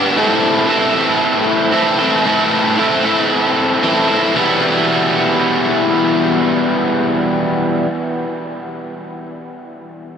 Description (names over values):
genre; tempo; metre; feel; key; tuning
rock; 114 BPM; 4/4; straight; E minor; A4 = 440 Hz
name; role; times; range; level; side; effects
overdriven electric guitar; solo; 0.0-7.9 s; E2 to A4; -13 LUFS; equal; wide subtle chorus, tape echo
room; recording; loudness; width
wet huge ambient reverb, RT60 8.2 s; dreamy mix soaked in reverb; -12 LUFS; side -7 dB against mid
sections
0.0-4.3 A section; 4.3-8.6 B section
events
none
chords
0.2 Am; 4.3 Em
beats
| 0.15 0.68 1.20 1.73 | 2.25 2.77 3.30 3.82 | 4.35 4.87 5.40 5.92 | 6.45 6.98 7.50